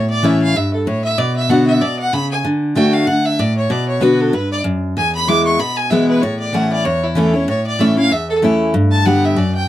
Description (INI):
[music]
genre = bluegrass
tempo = 191 BPM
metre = 4/4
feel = swing 56% on 8ths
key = unclear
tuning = A4 = 441 Hz
[part]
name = clear fiddle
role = melody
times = 0.0-9.7 s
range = E4 to D6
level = -19 LUFS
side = right 1 dB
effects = none
[part]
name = picked steel-string acoustic guitar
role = accompaniment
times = 0.0-9.7 s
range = E2 to G4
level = -15 LUFS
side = left 1 dB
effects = none
[sound]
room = light reverb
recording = dry, close 1970s-style studio recording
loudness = -13 LUFS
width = side -13 dB against mid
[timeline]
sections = 0.0-9.7 A section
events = none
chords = 0.0 A; 1.2 Bm; 2.4 D; 3.7 Bm; 5.0 E; 6.2 A; 8.7 G